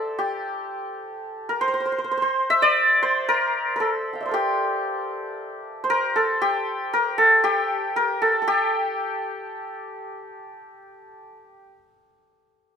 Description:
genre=indian classical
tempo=116 BPM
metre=4/4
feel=straight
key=G raga bhimpalasi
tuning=A4 = 440 Hz
part: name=santur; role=solo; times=0.0-11.7 s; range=G4 to G5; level=-20 LUFS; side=equal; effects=none
room=light reverb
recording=minimal, uncompressed stereo recording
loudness=-20 LUFS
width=side -7 dB against mid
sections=0.0-8.5 A section; 8.5-10.5 B section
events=none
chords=none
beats=| 0.18 0.71 1.23 1.75 | 2.27 2.79 3.31 3.83 | 4.34 4.86 5.38 5.89 | 6.41 6.93 7.44 7.96 | 8.47 8.98 9.50 10.01

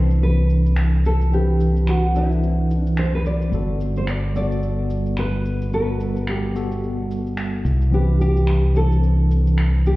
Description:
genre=sunset chillout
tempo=109 BPM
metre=4/4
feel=swing 58% on 16ths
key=unclear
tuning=A4 = 440 Hz
part: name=nylon-string guitar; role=melody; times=0.0-10.0 s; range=E4 to D5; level=-27 LUFS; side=equal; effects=ping-pong delay
part: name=tine electric piano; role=accompaniment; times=0.0-10.0 s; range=E3 to B4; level=-23 LUFS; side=equal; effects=overdrive, medium stereo tremolo, auto-pan
part: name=modern bright fingered electric bass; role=bass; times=0.0-10.0 s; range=G1 to C2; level=-19 LUFS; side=equal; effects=none
part: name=electronic shaker and finger snaps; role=drums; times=0.1-10.0 s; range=none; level=-34 LUFS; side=equal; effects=none
room=light reverb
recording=heard muffled through a wall, stone room reverb, EQ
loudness=-17 LUFS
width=side -19 dB against mid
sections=0.0-10.0 A section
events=none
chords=0.0 Cmaj9; 3.5 Gmaj9; 7.7 Cmaj9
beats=0.22 0.77 | 1.32 1.87 2.42 2.97 | 3.52 4.07 4.62 5.17 | 5.72 6.28 6.83 7.38 | 7.93 8.48 9.03 9.58

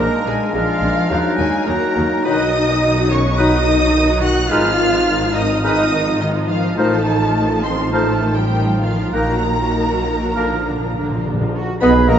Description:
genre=classical, dramatic, fast romantic movement for symphony orchestra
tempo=95-112 BPM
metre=4/4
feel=rubato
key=unclear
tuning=A4 = 440 Hz
part: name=warm symphonic violin section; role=melody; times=0.0-12.2 s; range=Eb5 to F#6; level=-23 LUFS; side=equal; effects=none
part: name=clear clarinet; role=second line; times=0.0-12.2 s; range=D4 to Cb5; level=-26 LUFS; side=left 3 dB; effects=none
part: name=clear oboe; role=second line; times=0.0-12.2 s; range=Bb4 to Cb6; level=-30 LUFS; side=left 2 dB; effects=none
part: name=rich studio violin section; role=second line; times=0.0-12.2 s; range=Eb4 to F#5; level=-25 LUFS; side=right 2 dB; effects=none
part: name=silver concert flute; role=second line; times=0.0-12.2 s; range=Bb5 to Gb6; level=-27 LUFS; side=right 5 dB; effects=none
part: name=mellow bassoon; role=accompaniment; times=0.0-12.2 s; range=F3 to Cb4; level=-26 LUFS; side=left 3 dB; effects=none
part: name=rich symphonic viola section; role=accompaniment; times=0.0-12.2 s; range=D3 to F#4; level=-25 LUFS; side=right 2 dB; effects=none
part: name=dark French horn section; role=sustained chords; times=0.0-12.2 s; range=F3 to D#4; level=-23 LUFS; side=equal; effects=none
part: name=rich symphonic double bass section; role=bass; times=0.0-12.2 s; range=Ab1 to Eb2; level=-22 LUFS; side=equal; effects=none
part: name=warm symphonic cello section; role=bass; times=0.0-12.2 s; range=Eb3 to Ab4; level=-22 LUFS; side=equal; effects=none
part: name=timpani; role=percussion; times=10.4-11.5 s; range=Bb2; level=-24 LUFS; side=equal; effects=none
part: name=dark trumpet section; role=stabs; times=11.8-12.2 s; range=Eb5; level=-22 LUFS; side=left 1 dB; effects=none
part: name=mellow tuba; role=bass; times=11.8-12.2 s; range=Bb1 to Cb2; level=-19 LUFS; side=equal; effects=none
room=wet cathedral reverb, RT60 6.4 s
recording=in a vast, echoing space, nothing above 7.8 kHz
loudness=-14 LUFS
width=side -9 dB against mid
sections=0.0-11.6 A section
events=timpani fill 10.4-11.6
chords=0.0 Bb7; 1.1 Ebm; 2.3 B; 4.5 Fm7/Ab; 6.8 F7/A; 9.1 Ebm/Bb; 10.4 Bb; 11.6 Ebm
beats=0.54 1.10 1.67 | 2.25 2.82 3.39 3.95 | 4.52 5.08 5.65 6.21 | 6.78 7.36 7.93 8.52 | 9.14 9.76 10.37 10.97 | 11.55 12.08

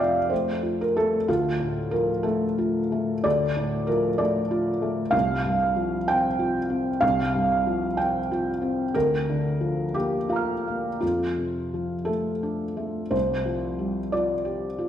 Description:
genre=neoclassical minimalist piano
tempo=55-65 BPM (dotted quarters)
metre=6/8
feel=rubato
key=unclear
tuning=A4 = 440 Hz
part: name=felt-muted upright piano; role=solo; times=0.0-14.9 s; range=C2 to F6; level=-22 LUFS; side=equal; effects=none
room=wet recital hall reverb, RT60 1.6 s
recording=recorded in a church or concert hall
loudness=-22 LUFS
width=side -10 dB against mid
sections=0.0-13.1 A section; 13.1-14.9 B section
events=none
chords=0.0 F; 1.3 Dm; 5.1 Csus4; 8.9 Bb/D; 11.0 F6; 13.1 Csus4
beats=0.31 | 1.28 2.24 | 3.25 4.20 | 5.13 6.08 | 7.02 7.98 | 8.95 9.96 | 11.01 12.09 | 13.14 14.13

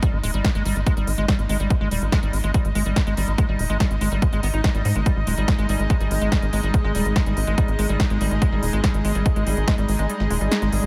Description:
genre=psychedelic trance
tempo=143 BPM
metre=4/4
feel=straight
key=unclear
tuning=A4 = 441 Hz
part: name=liquid acid bass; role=riff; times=0.0-10.9 s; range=G3 to D#4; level=-30 LUFS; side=equal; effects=chorus, sidechain pumping, analog delay
part: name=big-room dance drum kit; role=drums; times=0.0-10.9 s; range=hi-hat, snare drum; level=-31 LUFS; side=equal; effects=overdrive
part: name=electronic kick drum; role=drums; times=0.0-9.8 s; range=none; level=-23 LUFS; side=equal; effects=none
part: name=rich chamber string section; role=texture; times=0.0-10.9 s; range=G#3 to D#5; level=-33 LUFS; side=equal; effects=sidechain pumping
part: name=tight sequencer bass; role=bass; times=0.1-10.9 s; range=D#1 to G#2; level=-25 LUFS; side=equal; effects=none
part: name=evolving wavetable pad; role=sustained chords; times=5.4-10.9 s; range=G#3 to G#4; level=-32 LUFS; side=equal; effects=chorus, built-in reverb, sidechain pumping
room=light reverb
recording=none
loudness=-21 LUFS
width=mono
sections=0.0-10.9 A section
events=kick drops out 10.1-10.9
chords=0.0 G#5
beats=| 0.03 0.45 0.86 1.28 | 1.70 2.12 2.54 2.96 | 3.38 3.80 4.22 4.64 | 5.06 5.48 5.90 6.32 | 6.74 7.16 7.58 8.00 | 8.42 8.84 9.26 9.68 | 10.10 10.52

